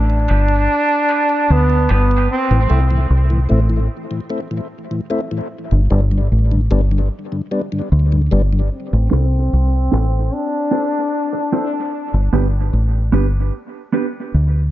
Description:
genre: reggae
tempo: 75 BPM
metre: 4/4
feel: straight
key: A minor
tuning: A4 = 440 Hz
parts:
  - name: clear trombone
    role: melody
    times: 0.0-2.7, 8.7-11.9 s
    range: B3 to D4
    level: -19 LUFS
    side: equal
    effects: low-pass filter, dub echo
  - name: deep dub fingered electric bass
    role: bass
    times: 0.0-14.7 s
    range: G1 to D2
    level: -14 LUFS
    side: equal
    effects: none
  - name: mellow tonewheel organ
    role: accompaniment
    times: 0.1-8.6 s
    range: G2 to E4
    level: -22 LUFS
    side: left 2 dB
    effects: slow rotary speaker, high-pass filter, dub echo
  - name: mellow electric guitar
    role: accompaniment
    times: 0.3-2.0, 9.1-14.1 s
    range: B3 to C5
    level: -22 LUFS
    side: right 4 dB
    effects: high-pass filter, low-pass filter, dub echo
room: light reverb, digital ambience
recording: echo-heavy mix, nothing above 7.5 kHz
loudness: -14 LUFS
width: side -14 dB against mid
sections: 0.0-8.7 A section; 8.7-14.7 B section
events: break 2.3-8.7; filter sweep 8.7-14.7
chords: 0.0 G; 2.3 Am; 5.5 G; 8.7 Am; 11.9 G

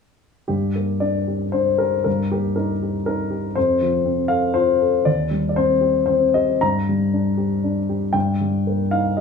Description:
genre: neoclassical minimalist piano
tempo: 118 BPM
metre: 3/4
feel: rubato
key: G minor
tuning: A4 = 442 Hz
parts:
  - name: warm grand piano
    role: solo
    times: 0.5-9.2 s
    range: Eb2 to Bb5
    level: -18 LUFS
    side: left 2 dB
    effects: none
room: moderate studio reverb, RT60 0.7 s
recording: studio ambience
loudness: -18 LUFS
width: side -6 dB against mid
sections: 0.5-9.2 A section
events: none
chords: 0.5 Gm; 2.1 Eb/G; 3.6 F; 5.1 Cm/Eb; 6.6 Gm; 8.1 Eb/G

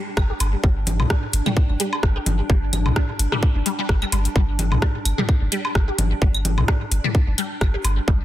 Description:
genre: minimal techno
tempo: 129 BPM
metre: 4/4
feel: swing 55% on 16ths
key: unclear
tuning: A4 = 440 Hz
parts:
  - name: swarming drone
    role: texture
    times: 0.0-8.2 s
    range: D4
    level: -33 LUFS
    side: right 1 dB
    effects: built-in reverb, sidechain pumping
  - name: punchy sub bass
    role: bass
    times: 0.2-8.2 s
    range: G1 to D2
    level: -22 LUFS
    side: equal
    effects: sidechain pumping
  - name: electronic kick drum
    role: drums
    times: 0.2-8.2 s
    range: none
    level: -18 LUFS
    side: equal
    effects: none
  - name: garage drum kit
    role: drums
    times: 0.2-7.9 s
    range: hi-hat, rim click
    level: -26 LUFS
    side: left 1 dB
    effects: soft clipping on snare
  - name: electronic claves, woodblock, congas and toms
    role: percussion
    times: 0.2-7.9 s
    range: none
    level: -26 LUFS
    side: left 2 dB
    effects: overdrive, tape echo
  - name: resonant blip pluck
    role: riff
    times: 0.3-8.1 s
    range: G3 to G4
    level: -28 LUFS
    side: left 1 dB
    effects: phaser, ensemble chorus, sidechain pumping, digital delay
room: little or no reverb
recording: dense, heavily limited modern master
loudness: -18 LUFS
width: side -14 dB against mid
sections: 0.0-8.2 A section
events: none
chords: 0.0 G5

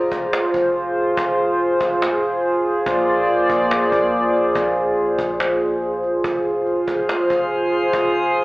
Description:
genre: hip hop, atmospheric cloud-rap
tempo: 142 BPM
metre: 4/4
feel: half-time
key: F dorian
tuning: A4 = 442 Hz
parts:
  - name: hollow soft pad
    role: sustained chords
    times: 0.0-8.4 s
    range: Bb3 to D5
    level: -17 LUFS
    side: equal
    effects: chorus
  - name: concert harp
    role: arpeggios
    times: 0.0-1.6 s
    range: Bb3 to D5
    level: -38 LUFS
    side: equal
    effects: none
  - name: warm 808-style bass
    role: bass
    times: 0.0-8.4 s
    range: F1 to Bb1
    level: -39 LUFS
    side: equal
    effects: none
  - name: cajon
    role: drums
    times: 0.1-8.4 s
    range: none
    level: -26 LUFS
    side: equal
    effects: none
  - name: drifting glass-harmonics texture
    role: texture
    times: 7.0-8.4 s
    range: Ab4 to C6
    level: -25 LUFS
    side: equal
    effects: chorus, built-in reverb
room: wet lush hall reverb, RT60 1.9 s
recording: AM radio sound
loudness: -17 LUFS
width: side -20 dB against mid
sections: 0.0-8.4 A section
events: none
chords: 0.0 Fm; 2.9 Bb7; 6.2 Fm

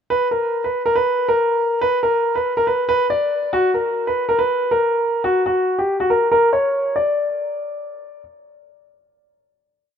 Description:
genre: hip hop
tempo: 140 BPM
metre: 4/4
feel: half-time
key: B harmonic minor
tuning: A4 = 439 Hz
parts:
  - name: clear grand piano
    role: solo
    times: 0.1-8.2 s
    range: F#4 to D5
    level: -17 LUFS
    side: equal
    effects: low-pass filter
room: light reverb, small room ambience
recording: rough home demo mix, low-pass filter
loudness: -16 LUFS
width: side -8 dB against mid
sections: 0.1-7.0 breakdown; 7.0-10.0 final note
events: filter sweep 0.1-7.0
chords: none

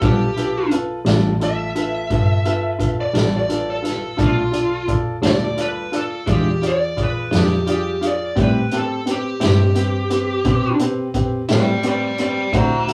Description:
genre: slow blues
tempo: 58 BPM (dotted quarters)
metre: 12/8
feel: straight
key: unclear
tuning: A4 = 439 Hz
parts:
  - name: smooth overdriven lead guitar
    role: melody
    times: 0.0-12.9 s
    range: F4 to Bb5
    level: -25 LUFS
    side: equal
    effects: none
  - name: bright upright piano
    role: accompaniment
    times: 0.0-12.9 s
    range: C4 to F5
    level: -25 LUFS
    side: equal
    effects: none
  - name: clean electric guitar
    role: accompaniment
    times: 0.0-12.7 s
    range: G2 to F#4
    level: -26 LUFS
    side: equal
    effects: tremolo
  - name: dark double bass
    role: bass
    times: 0.0-12.9 s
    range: G1 to B2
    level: -25 LUFS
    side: equal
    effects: none
  - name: vintage drum kit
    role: drums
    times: 0.0-12.9 s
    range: hi-hat, kick drum, snare drum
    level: -25 LUFS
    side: equal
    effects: none
room: wet booth ambience, RT60 0.2 s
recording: rough rehearsal-room recording, warm saturation, small room ambience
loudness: -19 LUFS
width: mono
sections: 0.0-12.9 A section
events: lead electric guitar solo 0.0-12.9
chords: 0.0 G7; 4.2 Bm7b5; 6.3 E7b9; 8.4 Am7

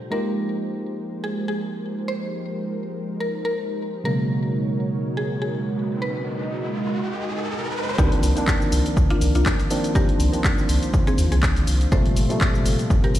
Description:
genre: deep house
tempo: 122 BPM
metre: 4/4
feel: swing 56% on 16ths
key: C minor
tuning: A4 = 440 Hz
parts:
  - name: warm analog pad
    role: sustained chords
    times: 0.0-13.2 s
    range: Eb3 to Eb5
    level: -30 LUFS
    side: right 1 dB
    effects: chorus, sidechain pumping
  - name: tine electric piano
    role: stabs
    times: 0.0-13.2 s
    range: Bb2 to G4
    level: -25 LUFS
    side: equal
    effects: vintage 12-bit sampler grit, sidechain pumping, low-pass filter, ping-pong delay
  - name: mallet-like synth pluck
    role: melody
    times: 0.1-13.2 s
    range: C4 to C5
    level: -30 LUFS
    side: left 1 dB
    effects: chorus, ping-pong delay
  - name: riser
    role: sound effects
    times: 5.4-8.0 s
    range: none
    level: -31 LUFS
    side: equal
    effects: none
  - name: warm sub bass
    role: bass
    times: 8.0-13.2 s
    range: G1 to Eb2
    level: -21 LUFS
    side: equal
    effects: tube saturation, sidechain pumping
  - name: electronic kick drum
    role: drums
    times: 8.0-13.0 s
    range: none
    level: -21 LUFS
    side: equal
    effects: studio reverb
  - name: house drum kit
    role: drums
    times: 8.0-13.2 s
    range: handclaps, hi-hat, shaker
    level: -28 LUFS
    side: left 1 dB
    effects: low-pass filter on perc, studio reverb, low-pass filter on hats, low-pass filter on snare
room: light reverb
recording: played on a big sound system in a bare room, stone room reverb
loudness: -20 LUFS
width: side -13 dB against mid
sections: 0.0-8.0 A section; 8.0-13.2 B section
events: filter sweep on tine electric piano 0.0-8.0; riser 5.4-8.0; drop 8.0-13.2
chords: 0.1 Fm11; 4.0 Abm11; 8.0 Cm11; 11.9 Gm11

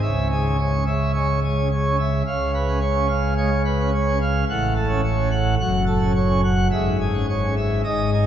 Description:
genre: classical, organ toccata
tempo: 108 BPM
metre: 4/4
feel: straight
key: C# minor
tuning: A4 = 438 Hz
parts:
  - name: pipe organ, plenum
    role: solo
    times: 0.0-8.3 s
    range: F#1 to F#5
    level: -18 LUFS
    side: equal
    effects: none
room: wet cathedral reverb, RT60 4.8 s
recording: heard from further back in the room, nothing above 7.8 kHz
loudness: -18 LUFS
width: side -10 dB against mid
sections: 0.0-8.3 A section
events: none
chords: 0.0 C#m; 2.3 C#7; 4.5 F#m/A; 5.6 F#m; 6.7 C#m/G#

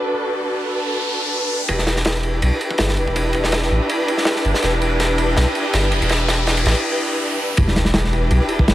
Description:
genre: drum and bass, jungle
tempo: 163 BPM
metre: 4/4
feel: straight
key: E minor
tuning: A4 = 440 Hz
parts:
  - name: dark studio string section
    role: sustained chords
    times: 0.0-8.7 s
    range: D4 to B4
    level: -21 LUFS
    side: equal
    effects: none
  - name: riser and sub drop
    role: sound effects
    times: 0.0-8.7 s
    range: none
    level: -27 LUFS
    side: equal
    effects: none
  - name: soft dub sub bass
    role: bass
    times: 1.7-8.7 s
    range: E1 to B1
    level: -20 LUFS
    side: equal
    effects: none
  - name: crunchy breakbeat drum kit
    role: drums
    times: 1.7-8.7 s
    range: kick drum, ride cymbal, snare drum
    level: -20 LUFS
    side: equal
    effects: high-pass filter on kick, high-pass filter on cymbals, high-pass filter on snare, high-pass filter on room
room: light reverb, small room reverb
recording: vinyl crackle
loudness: -16 LUFS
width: side -14 dB against mid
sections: 0.0-1.7 A section; 1.7-7.6 B section; 7.6-8.7 C section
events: riser 0.0-1.7, 1.7-7.6; build-up 1.7-7.6; drum fill 4.6-6.8; break 6.8-7.6; drop 7.6-8.7; impact 7.6-8.7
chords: 0.0 Bm7; 1.7 Em7

